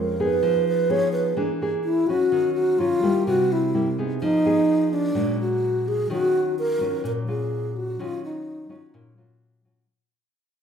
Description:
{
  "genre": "bossa nova",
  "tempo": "127 BPM",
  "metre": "4/4",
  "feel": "straight",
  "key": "Eb minor",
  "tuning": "A4 = 439 Hz",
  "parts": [
    { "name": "breathy mellow wooden-headed alto flute", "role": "melody", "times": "0.0-9.1 s", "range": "D4 to Db5", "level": "-22 LUFS", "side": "equal", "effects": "none" },
    { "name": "nylon-string guitar", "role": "accompaniment", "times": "0.0-9.9 s", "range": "F2 to Ab4", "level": "-26 LUFS", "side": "left 1 dB", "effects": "none" }
  ],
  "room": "wet large studio reverb, RT60 0.9 s",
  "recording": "band playing live in one room",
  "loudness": "-20 LUFS",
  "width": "side -7 dB against mid",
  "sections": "0.0-6.1 A section; 6.1-9.9 B section",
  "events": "fade-out 6.1-9.9",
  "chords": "0.4 Fm7b5; 1.4 E7#11; 2.3 Ebm9; 3.3 C7; 4.2 Fm7b5; 5.1 Bb7b13; 6.1 Ebm9",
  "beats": "| 0.42 0.89 1.37 1.84 | 2.31 2.78 3.26 3.73 | 4.20 4.67 5.15 5.62 | 6.09 6.57 7.04 7.51 | 7.98 8.46 8.93 9.40"
}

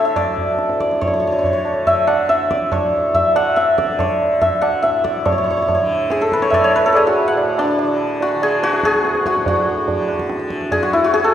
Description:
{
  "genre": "indian classical, Hindustani",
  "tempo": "142 BPM",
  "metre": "5/4",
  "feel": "straight",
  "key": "D raga yaman",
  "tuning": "A4 = 440 Hz",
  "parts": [
    { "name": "santur", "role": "melody", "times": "0.0-11.3 s", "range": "D4 to F#5", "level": "-16 LUFS", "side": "left 1 dB", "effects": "none" },
    { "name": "tanpura", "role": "drone", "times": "0.0-11.3 s", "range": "D2 to D3", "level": "-26 LUFS", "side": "right 1 dB", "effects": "none" },
    { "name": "tabla", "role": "percussion", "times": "0.2-11.3 s", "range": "none", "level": "-22 LUFS", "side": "right 3 dB", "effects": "none" }
  ],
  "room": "wet recital hall reverb, RT60 1.6 s",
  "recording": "heard from further back in the room",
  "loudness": "-15 LUFS",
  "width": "side -10 dB against mid",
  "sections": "0.0-5.3 A section; 5.3-11.3 B section",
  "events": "none",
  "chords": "none",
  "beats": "0.15 0.58 | 1.01 1.44 1.86 2.29 2.72 | 3.14 3.56 3.99 4.41 4.84 | 5.26 5.68 6.10 6.53 6.95 | 7.37 7.79 8.21 8.63 9.05 | 9.46 9.88 10.30 10.72 11.13"
}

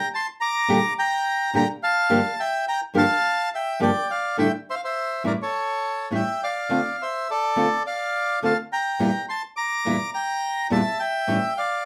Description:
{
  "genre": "tango",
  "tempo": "105 BPM",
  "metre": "4/4",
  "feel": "rubato",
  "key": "D minor",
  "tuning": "A4 = 443 Hz",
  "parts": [
    { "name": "bandoneon", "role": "melody", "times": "0.0-11.8 s", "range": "A4 to D6", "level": "-25 LUFS", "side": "equal", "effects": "none" },
    { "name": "nylon-string guitar", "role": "accompaniment", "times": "0.7-11.4 s", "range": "E2 to G4", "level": "-24 LUFS", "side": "equal", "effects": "none" }
  ],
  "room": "wet studio ambience, RT60 0.5 s",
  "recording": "band playing live in one room",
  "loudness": "-24 LUFS",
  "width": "mono",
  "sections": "0.0-11.9 A section",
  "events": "none",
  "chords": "0.0 Bb6; 2.1 Gm7; 4.4 A7sus4; 5.5 A7; 6.7 Dm7; 9.0 Edim; 11.3 A7",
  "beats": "0.40 0.97 1.53 | 2.10 2.66 3.23 3.81 | 4.38 4.96 5.53 6.12 | 6.70 7.28 7.86 8.43 | 9.00 9.58 10.15 10.72 | 11.29"
}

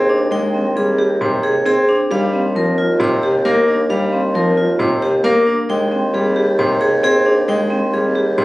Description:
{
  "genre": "classical, minimalist pattern music",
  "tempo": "134 BPM",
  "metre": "4/4",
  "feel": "straight",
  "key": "unclear",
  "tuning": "A4 = 441 Hz",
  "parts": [
    { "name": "vibraphone with medium hard mallets", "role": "melody", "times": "0.0-8.4 s", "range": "Ab4 to G5", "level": "-19 LUFS", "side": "left 1 dB", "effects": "none" },
    { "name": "clear concert grand piano", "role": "accompaniment", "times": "0.0-8.4 s", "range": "C3 to C4", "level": "-19 LUFS", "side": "equal", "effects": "none" },
    { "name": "warm bassoon", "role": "bass", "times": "0.0-8.4 s", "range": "Eb2", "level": "-19 LUFS", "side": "equal", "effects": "none" },
    { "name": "vibraphone with medium hard mallets", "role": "arpeggios", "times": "0.1-8.4 s", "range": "C4 to Ab4", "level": "-20 LUFS", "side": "right 1 dB", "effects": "none" }
  ],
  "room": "light reverb",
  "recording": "recorded on a phone in the room, club reverb, compression",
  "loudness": "-14 LUFS",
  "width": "side -18 dB against mid",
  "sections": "0.0-8.4 A section",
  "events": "none",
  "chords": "0.0 Abmaj7/Eb; 2.1 Eb69; 5.7 Abmaj7/Eb",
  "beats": "| 0.32 0.77 1.22 1.66 | 2.11 2.56 3.01 3.45 | 3.90 4.35 4.80 5.25 | 5.69 6.14 6.59 7.04 | 7.48 7.93 8.38"
}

